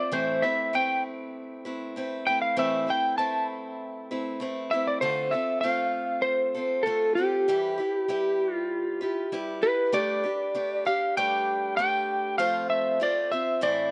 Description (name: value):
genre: rock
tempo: 98 BPM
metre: 4/4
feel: straight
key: A minor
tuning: A4 = 439 Hz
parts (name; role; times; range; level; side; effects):
- electric slide guitar; melody; 0.0-13.9 s; G4 to A5; -28 LUFS; equal; none
- picked acoustic archtop guitar; accompaniment; 0.0-13.9 s; A2 to C5; -34 LUFS; equal; none
room: light reverb, small room ambience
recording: rough home demo mix, nothing above 10.8 kHz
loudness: -27 LUFS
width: mono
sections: 0.0-9.9 A section; 9.9-13.9 B section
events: none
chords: 0.1 Amadd9; 5.0 Dm7; 7.5 Em; 9.9 Gadd9; 12.4 F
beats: | 0.11 0.73 1.34 1.96 | 2.57 3.18 3.79 4.41 | 5.02 5.64 6.25 6.86 | 7.48 8.09 8.71 9.32 | 9.93 10.55 11.16 11.78 | 12.39 13.01 13.62